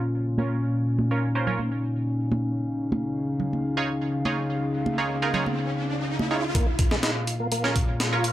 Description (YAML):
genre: breakbeat, breaks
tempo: 124 BPM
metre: 4/4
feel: straight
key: Bb minor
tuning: A4 = 441 Hz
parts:
  - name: dark analog pad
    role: sustained chords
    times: 0.0-8.3 s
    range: Bb2 to F5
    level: -26 LUFS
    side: left 1 dB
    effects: chorus, sidechain pumping
  - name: band-passed chord stab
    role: stabs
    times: 0.4-8.3 s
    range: Db4 to Db5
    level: -28 LUFS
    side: right 3 dB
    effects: chorus, digital delay
  - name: congas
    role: percussion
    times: 0.4-6.3 s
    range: none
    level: -30 LUFS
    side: right 2 dB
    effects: none
  - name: riser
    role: sound effects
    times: 4.1-8.3 s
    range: none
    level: -34 LUFS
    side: right 1 dB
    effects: none
  - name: overdriven tonewheel organ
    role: riff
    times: 6.5-8.3 s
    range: Ab3 to F4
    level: -30 LUFS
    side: equal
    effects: chorus vibrato, fast rotary speaker, low-pass filter, digital delay
  - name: breakbeat sampler-style drum kit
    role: drums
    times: 6.5-8.3 s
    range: hi-hat, kick drum, snare drum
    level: -24 LUFS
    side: equal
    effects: none
room: moderate small room reverb, RT60 0.5 s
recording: low-pass filter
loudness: -23 LUFS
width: side -13 dB against mid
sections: 0.0-6.6 A section; 6.6-8.3 B section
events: filter sweep 0.0-6.6, 6.6-8.3; riser 4.1-6.6; build-up 6.6-8.3; filter sweep on tonewheel organ 6.6-8.3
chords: 0.0 Bbm; 2.7 Dbadd9; 6.6 Bbm